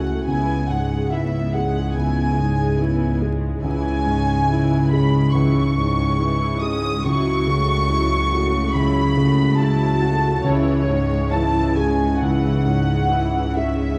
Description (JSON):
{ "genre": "cinematic, emotional film score for orchestra", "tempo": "70 BPM", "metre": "4/4", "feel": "rubato", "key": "C# minor", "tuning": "A4 = 441 Hz", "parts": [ { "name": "warm symphonic violin section", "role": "melody", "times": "0.0-14.0 s", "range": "C#5 to D#6", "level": "-30 LUFS", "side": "equal", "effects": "none" }, { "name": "dark chamber violin section", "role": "second line", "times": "0.0-14.0 s", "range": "C#5 to D#6", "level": "-30 LUFS", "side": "equal", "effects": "none" }, { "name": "dark baby grand piano", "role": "accompaniment", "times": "0.0-14.0 s", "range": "C#2 to G#4", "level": "-24 LUFS", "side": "equal", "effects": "none" }, { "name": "dark symphonic viola section", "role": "accompaniment", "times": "0.0-14.0 s", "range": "E3 to G#4", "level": "-29 LUFS", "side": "equal", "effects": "none" }, { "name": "dark symphonic double bass section", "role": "bass", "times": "0.0-14.0 s", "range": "C#2", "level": "-26 LUFS", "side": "equal", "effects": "none" }, { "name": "warm symphonic cello section", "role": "bass", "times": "0.0-14.0 s", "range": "C#3", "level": "-27 LUFS", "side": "equal", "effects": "none" } ], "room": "moderate scoring stage reverb, RT60 1.8 s", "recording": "dark, warm production, vinyl crackle", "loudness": "-20 LUFS", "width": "mono", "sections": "0.0-14.0 A section", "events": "none", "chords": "0.3 E/C#; 3.6 C#m; 7.0 F#m7/C#; 10.5 C#m" }